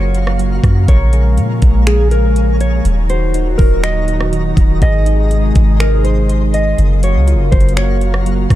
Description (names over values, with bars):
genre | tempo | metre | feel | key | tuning
hip hop, atmospheric cloud-rap | 122 BPM | 4/4 | half-time | unclear | A4 = 440 Hz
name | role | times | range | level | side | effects
mellow electric guitar | melody | 0.0-8.6 s | Ab4 to Eb5 | -21 LUFS | left 1 dB | ping-pong delay
hollow soft pad | sustained chords | 0.0-8.6 s | Bb2 to F5 | -20 LUFS | left 1 dB | chorus, sidechain pumping
soft electric-piano-like synth keys | arpeggios | 0.0-8.6 s | Eb3 to Bb4 | -25 LUFS | right 3 dB | chorus, ping-pong delay
soft 808-style bass | bass | 0.0-8.6 s | Eb1 to Bb2 | -13 LUFS | equal | none
twinkling granular texture | texture | 0.0-8.6 s | Gb4 to C6 | -30 LUFS | right 1 dB | built-in reverb
smooth R&B drum kit | drums | 0.1-8.6 s | finger snaps, hi-hat, kick drum, rim click | -13 LUFS | equal | none
room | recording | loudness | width
digital ambience | dark, warm production | -10 LUFS | side -14 dB against mid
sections
0.0-8.6 A section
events
none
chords
0.0 Gbmaj7; 0.9 Bbm7; 2.9 Ebm; 4.8 Ab; 6.8 Gbmaj7